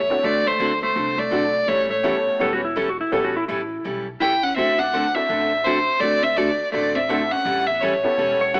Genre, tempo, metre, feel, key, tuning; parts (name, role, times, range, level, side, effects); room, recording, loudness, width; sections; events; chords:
country, western swing; 166 BPM; 4/4; swing 62% on 8ths; A mixolydian; A4 = 441 Hz
clear fiddle; melody; 0.0-8.6 s; C5 to G5; -23 LUFS; equal
vintage hollow-body jazz guitar; second line; 0.0-8.6 s; A3 to E4; -31 LUFS; equal
upright bass; bass; 0.0-8.6 s; E1 to D2; -41 LUFS; equal
honky-tonk upright piano; accompaniment; 0.1-8.5 s; B3 to B4; -30 LUFS; equal
picked steel-string acoustic guitar; accompaniment; 0.2-8.6 s; D3 to A4; -28 LUFS; equal
clean lap steel guitar; second line; 2.4-3.8, 8.4-8.6 s; E4 to F#5; -26 LUFS; equal
moderate echo chamber reverb, RT60 1.9 s; AM radio sound; -21 LUFS; mono
0.0-8.6 A section
0.2 D9; 1.7 A9; 4.6 D9; 7.5 A9